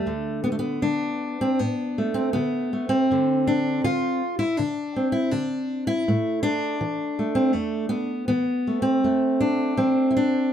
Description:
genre	folk, solo fingerstyle acoustic guitar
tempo	80 BPM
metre	4/4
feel	rubato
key	D dorian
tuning	A4 = 440 Hz
part	fingerpicked steel-string acoustic guitar	solo	0.0-10.5 s	D2 to F4	-21 LUFS	equal	none
room	moderate small room reverb, RT60 0.5 s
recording	dark, warm production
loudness	-21 LUFS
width	side -9 dB against mid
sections	0.0-10.5 A section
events	none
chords	0.1 D5; 3.1 Gsus4; 6.1 A5; 9.0 F

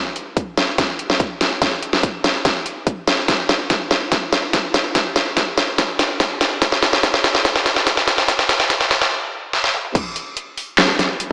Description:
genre	dubstep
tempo	144 BPM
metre	4/4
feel	half-time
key	none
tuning	none
part	dubstep drum kit	drums	0.2-11.3 s	crash cymbal, handclaps, hi-hat, snare drum, toms	-19 LUFS	equal	overdrive, high-pass filter on hats, high-pass filter on snare, high-pass filter on toms, high-pass filter on cymbals, high-pass filter on room
part	electronic kick drum	drums	0.4-10.0 s	none	-25 LUFS	equal	overdrive
room	wet lush hall reverb, RT60 2.0 s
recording	dreamy mix soaked in reverb, high-pass filter, small speaker sound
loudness	-18 LUFS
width	mono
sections	0.0-9.9 A section; 9.9-11.3 B section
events	build-up 0.0-9.9; drum fill 0.0-9.1, 9.5-9.9; stop 9.1-9.9; drop 9.9-11.3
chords	none

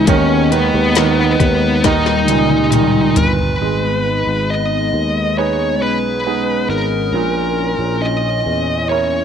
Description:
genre	pop ballad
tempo	68 BPM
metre	4/4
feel	straight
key	G# minor from 3.6 s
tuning	A4 = 440 Hz
part	high-gain lead guitar	melody	0.0-9.2 s	B3 to D#5	-17 LUFS	left 1 dB	distortion
part	bright grand piano	accompaniment	0.0-9.2 s	A#2 to C#5	-20 LUFS	right 12 dB	none
part	warm analog pad	sustained chords	0.0-9.2 s	A#2 to E4	-21 LUFS	left 4 dB	chorus
part	sustaining fretless electric bass	bass	0.0-9.2 s	G1 to E2	-20 LUFS	equal	none
part	smooth R&B drum kit	drums	0.1-3.6 s	hi-hat, kick drum, snare drum, toms	-18 LUFS	left 3 dB	none
room	moderate spring reverb, RT60 2.3 s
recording	1960s-style stereo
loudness	-13 LUFS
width	side -8 dB against mid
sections	0.0-3.6 A section; 3.6-9.2 B section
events	drum fill 1.8-3.6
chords	0.1 G#m/D#; 1.8 D#; 3.6 G#m; 7.1 A#dim

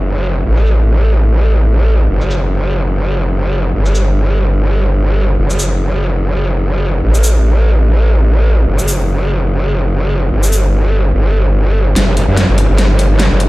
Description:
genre	heavy wobble dubstep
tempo	146 BPM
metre	4/4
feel	swing 55% on 16ths, half-time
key	F# phrygian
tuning	A4 = 440 Hz
part	growl bass	bass	0.0-13.5 s	F#1 to F#2	-11 LUFS	equal	distortion, chorus, overdrive
part	dubstep drum kit	drums	0.6-13.5 s	hi-hat, shaker, snare drum	-18 LUFS	equal	low-pass filter on hats, small room ambience, low-pass filter on snare, low-pass filter on perc, low-pass filter on cymbals
room	little or no reverb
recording	played on a big sound system in a bare room, large studio reverb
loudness	-11 LUFS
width	side -19 dB against mid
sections	0.0-12.0 A section; 12.0-13.5 B section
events	build-up 12.0-13.5; drum fill 12.0-13.5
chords	none

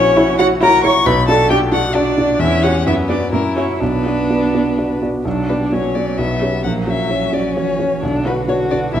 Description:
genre	quick classical-period movement for piano quartet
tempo	130 BPM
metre	3/4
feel	rubato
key	B minor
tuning	A4 = 440 Hz
part	rich violin	melody	0.0-9.0 s	A#4 to C#6	-19 LUFS	left 5 dB	none
part	rich cello	second line	0.0-9.0 s	D3 to C#5	-21 LUFS	right 7 dB	none
part	warm grand piano	accompaniment	0.0-9.0 s	A#1 to E5	-17 LUFS	equal	none
part	dark violin	second line	0.2-9.0 s	A#3 to F#4	-22 LUFS	equal	none
room	wet recital hall reverb, RT60 1.7 s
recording	dark, warm production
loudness	-14 LUFS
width	side -10 dB against mid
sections	0.0-5.3 A section; 5.3-9.0 B section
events	none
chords	0.0 F#7/A#; 1.1 Bm; 2.4 C#dim/E; 2.9 Bm/F#; 3.3 F#7; 3.8 Bm; 6.2 C#m7b5/B; 6.6 F#7/A#; 8.0 Bm

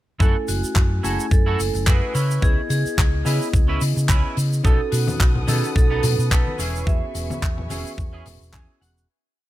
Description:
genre	nu-disco, nu disco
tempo	108 BPM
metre	4/4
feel	swing 55% on 16ths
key	E major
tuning	A4 = 440 Hz
part	vibraphone with hard mallets	melody	0.2-8.5 s	F#4 to E5	-29 LUFS	right 3 dB	dub echo
part	mellow tine electric piano	accompaniment	0.2-9.1 s	A3 to G#5	-31 LUFS	equal	auto-pan, sidechain pumping, low-pass filter, ping-pong delay
part	clean electric guitar	riff	0.2-9.1 s	B3 to G#5	-31 LUFS	right 4 dB	analog chorus
part	hollow-body short-scale fingered electric bass	bass	0.2-9.0 s	E1 to C#3	-23 LUFS	equal	tube saturation, sidechain pumping
part	electronic kick drum	drums	0.2-8.7 s	none	-18 LUFS	equal	none
part	tight funk drum kit	drums	0.2-9.1 s	handclaps, hi-hat, shaker	-28 LUFS	left 1 dB	none
part	muted chamber string section	sustained chords	4.6-9.1 s	B4 to D#6	-36 LUFS	equal	sidechain pumping
part	congas	percussion	5.1-8.4 s	none	-29 LUFS	left 3 dB	none
room	small room ambience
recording	none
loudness	-18 LUFS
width	side -15 dB against mid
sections	0.2-9.1 groove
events	fade-out 6.1-9.1; clean electric guitar fill 8.3-9.1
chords	0.2 F#m7; 2.1 C#m7; 4.6 B7; 6.6 E6

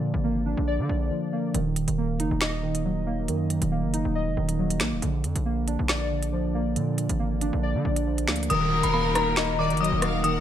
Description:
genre	hip hop, drill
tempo	138 BPM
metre	4/4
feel	half-time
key	Eb harmonic minor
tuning	A4 = 440 Hz
part	warbly lo-fi synth keys	accompaniment	0.0-10.4 s	D3 to Eb5	-26 LUFS	right 2 dB	chorus
part	distorted 808-style bass	bass	0.0-10.4 s	Eb1 to D3	-28 LUFS	equal	distortion
part	drill drum kit	drums	1.5-10.3 s	finger snaps, hi-hat, rim click, snare drum	-29 LUFS	equal	vintage 12-bit sampler grit
part	dark detuned synth bell	melody	8.5-10.4 s	Bb5 to Eb6	-26 LUFS	left 4 dB	chorus, ping-pong delay
part	rich studio violin section	second line	8.5-10.4 s	Bb4 to Gb5	-30 LUFS	left 3 dB	ping-pong delay
part	rich symphonic string section	sustained chords	8.5-10.4 s	Eb3 to Bb4	-34 LUFS	left 3 dB	none
part	downlifter	sound effects	8.5-10.4 s	none	-34 LUFS	left 1 dB	none
room	light reverb, digital ambience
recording	none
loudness	-23 LUFS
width	side -10 dB against mid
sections	0.0-8.5 A section; 8.5-10.4 B section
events	break 0.0-1.5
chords	0.0 Bb; 1.5 Ebm; 5.0 Bb; 8.5 Ebm

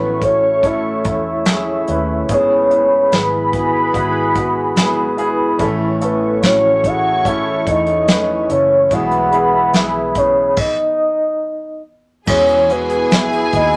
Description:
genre	pop ballad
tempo	72 BPM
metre	4/4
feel	straight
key	E major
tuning	A4 = 440 Hz
part	soft octave-layered synth lead	melody	0.0-13.8 s	A4 to F#5	-18 LUFS	equal	chorus, tremolo
part	dark upright piano	accompaniment	0.0-13.8 s	G#2 to B4	-25 LUFS	equal	none
part	sweeping resonant pad	sustained chords	0.0-13.8 s	G#3 to C#6	-22 LUFS	equal	chorus
part	fingerpicked steel-string acoustic guitar	arpeggios	0.0-13.8 s	E2 to A4	-30 LUFS	equal	none
part	vintage muted fingered electric bass	bass	0.0-13.8 s	F#1 to E2	-30 LUFS	equal	none
part	soft brush drum kit	drums	0.2-13.7 s	crash cymbal, hi-hat, kick drum, snare drum	-21 LUFS	equal	none
part	warm studio violin section	second line	12.3-13.8 s	G#4 to G#5	-22 LUFS	equal	none
part	egg shaker	percussion	12.3-13.8 s	none	-51 LUFS	equal	none
room	light reverb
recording	none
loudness	-16 LUFS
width	mono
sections	0.0-12.3 A section; 12.3-13.8 B section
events	stop 10.6-12.3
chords	0.0 A; 2.3 E/G#; 5.6 A; 8.9 E/B; 10.6 N.C.; 12.3 E

